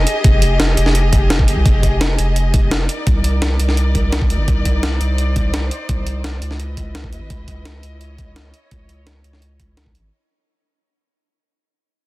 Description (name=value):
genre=liquid drum and bass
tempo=170 BPM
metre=4/4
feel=straight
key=unclear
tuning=A4 = 444 Hz
part: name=warm studio string section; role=sustained chords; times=0.0-10.1 s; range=Eb4 to Eb5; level=-24 LUFS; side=left 1 dB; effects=low-pass filter
part: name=saturated sub bass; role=bass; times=0.0-10.1 s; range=F1 to Eb2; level=-18 LUFS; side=equal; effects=none
part: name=breakbeat sampler-style drum kit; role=drums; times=0.1-10.0 s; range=hi-hat, snare drum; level=-22 LUFS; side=equal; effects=none
part: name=electronic kick drum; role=drums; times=0.2-9.9 s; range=none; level=-16 LUFS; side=equal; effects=none
room=digital ambience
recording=dense, heavily limited modern master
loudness=-14 LUFS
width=side -19 dB against mid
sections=0.0-10.1 A section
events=fade-out 0.0-10.1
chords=0.0 Fm9; 2.9 Cm9; 6.6 Dbm9